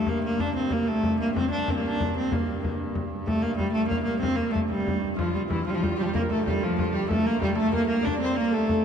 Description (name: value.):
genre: medieval dance.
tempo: 125 BPM (dotted quarters).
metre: 6/8.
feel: straight.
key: G dorian.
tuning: A4 = 439 Hz.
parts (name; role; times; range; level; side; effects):
clear viola da gamba; melody; 0.0-8.8 s; E3 to D4; -25 LUFS; equal; none.
warm hurdy-gurdy; drone; 0.0-8.8 s; G2; -36 LUFS; equal; none.
frame drum; percussion; 0.1-8.8 s; none; -30 LUFS; left 2 dB; none.
clear fiddle; second line; 5.2-8.8 s; E4 to D5; -34 LUFS; left 5 dB; none.
concert harp; second line; 5.2-8.8 s; E4 to D5; -32 LUFS; right 2 dB; none.
room: wet church reverb, RT60 3.1 s.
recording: dark, warm production.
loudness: -23 LUFS.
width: side -7 dB against mid.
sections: 0.0-5.2 A section; 5.2-8.8 A section.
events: none.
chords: none.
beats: | 0.39 0.87 | 1.35 1.82 | 2.30 2.78 | 3.26 3.74 | 4.22 4.70 | 5.18 5.66 | 6.14 6.61 | 7.09 7.57 | 8.05 8.53.